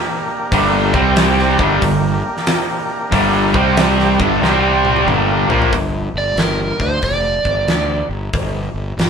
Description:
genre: blues rock power trio and southern rock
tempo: 92 BPM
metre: 4/4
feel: swing 65% on 8ths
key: G minor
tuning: A4 = 441 Hz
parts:
  - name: overdriven tonewheel organ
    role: sustained chords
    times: 0.0-5.7 s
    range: G3 to C5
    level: -21 LUFS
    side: right 1 dB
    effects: none
  - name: fuzz guitar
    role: riff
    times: 0.5-5.7 s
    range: G2 to C4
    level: -14 LUFS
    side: right 1 dB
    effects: distortion
  - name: fuzz fingered electric bass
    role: bass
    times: 0.5-9.1 s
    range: F1 to D2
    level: -21 LUFS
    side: equal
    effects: overdrive
  - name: big rock drum kit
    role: drums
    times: 0.5-9.1 s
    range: hi-hat, kick drum, snare drum, toms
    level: -20 LUFS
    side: equal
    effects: none
  - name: overdriven slide guitar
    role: melody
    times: 6.2-8.1 s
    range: Bb4 to D5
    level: -18 LUFS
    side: right 2 dB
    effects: none
room: moderate studio reverb, RT60 0.5 s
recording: band playing live in one room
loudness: -13 LUFS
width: side -6 dB against mid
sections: 0.0-5.7 A section; 5.7-9.1 B section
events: drum fill 4.4-5.7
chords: 0.0 Gm; 0.8 C5; 1.5 Gm; 3.5 C5; 4.1 G5; 4.4 C5; 5.1 Gm; 5.7 G5

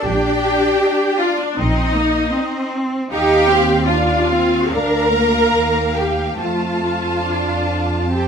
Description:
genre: classical, slow romantic movement for string orchestra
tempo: 69-79 BPM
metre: 4/4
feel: rubato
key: unclear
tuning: A4 = 442 Hz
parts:
  - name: clear symphonic violin section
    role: second line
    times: 0.0-8.3 s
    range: D5 to Bb5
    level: -25 LUFS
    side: equal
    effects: none
  - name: rich symphonic viola section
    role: accompaniment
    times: 0.0-8.3 s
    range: D4 to Bb4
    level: -17 LUFS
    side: equal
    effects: none
  - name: rich symphonic cello section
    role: bass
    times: 0.0-8.3 s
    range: A3 to Eb4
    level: -22 LUFS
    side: equal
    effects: none
  - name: rich symphonic double bass section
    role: bass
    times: 0.0-8.3 s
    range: Bb1 to F2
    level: -22 LUFS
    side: right 1 dB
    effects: none
  - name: rich studio violin section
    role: melody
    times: 0.8-8.3 s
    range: Eb5 to A5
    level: -26 LUFS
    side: equal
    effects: none
room: moderate studio reverb, RT60 0.6 s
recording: none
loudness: -15 LUFS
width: side -7 dB against mid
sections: 0.0-8.3 A section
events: none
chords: 0.0 Cm/Bb; 3.1 F5/Eb; 4.7 Bb/D; 6.4 F

